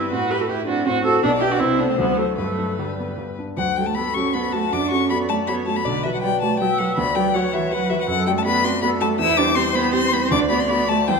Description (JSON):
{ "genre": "quick classical-period movement for piano quartet", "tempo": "160 BPM", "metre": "3/4", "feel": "rubato", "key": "G major, D major from 3.6 s", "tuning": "A4 = 438 Hz", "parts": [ { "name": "warm violin", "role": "melody", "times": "0.0-11.2 s", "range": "B4 to E6", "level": "-23 LUFS", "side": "left 8 dB", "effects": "none" }, { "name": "warm cello", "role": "second line", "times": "0.0-11.2 s", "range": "D3 to G4", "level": "-24 LUFS", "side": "right 5 dB", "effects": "none" }, { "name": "rich viola", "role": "accompaniment", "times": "0.0-11.2 s", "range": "G3 to E5", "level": "-25 LUFS", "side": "right 2 dB", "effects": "none" }, { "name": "warm grand piano", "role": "accompaniment", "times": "0.0-11.2 s", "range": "B1 to D5", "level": "-25 LUFS", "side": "equal", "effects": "none" } ], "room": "wet recital hall reverb, RT60 1.6 s", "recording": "none", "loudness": "-18 LUFS", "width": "side -4 dB against mid", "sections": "0.0-3.6 A section; 3.6-11.2 B section", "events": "none", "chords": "0.1 F#dim/A; 1.2 G/B; 1.6 Am/C; 2.0 D7; 2.4 G; 3.6 D; 4.7 D/F#; 5.9 Bm; 7.0 Bm/D; 8.1 D/F#; 9.2 C/E; 10.3 D" }